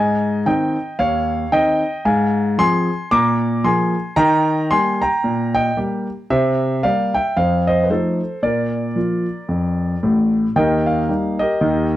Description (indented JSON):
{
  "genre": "jazz, stride piano",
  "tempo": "113 BPM",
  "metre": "4/4",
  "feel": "swing 58% on 8ths",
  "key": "Eb major",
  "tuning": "A4 = 440 Hz",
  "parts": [
    { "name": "warm concert grand piano", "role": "solo", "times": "0.0-12.0 s", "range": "A1 to D6", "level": "-16 LUFS", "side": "equal", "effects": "none" }
  ],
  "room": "moderate club reverb, RT60 0.6 s",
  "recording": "dark, warm production",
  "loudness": "-16 LUFS",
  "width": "side -14 dB against mid",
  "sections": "0.0-10.6 A section; 10.6-12.0 B section",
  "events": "none",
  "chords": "0.0 Ab; 2.0 Fm/Ab; 3.1 Bb7; 4.2 Eb; 6.3 C7; 7.4 F7; 8.4 Bb; 10.6 Eb"
}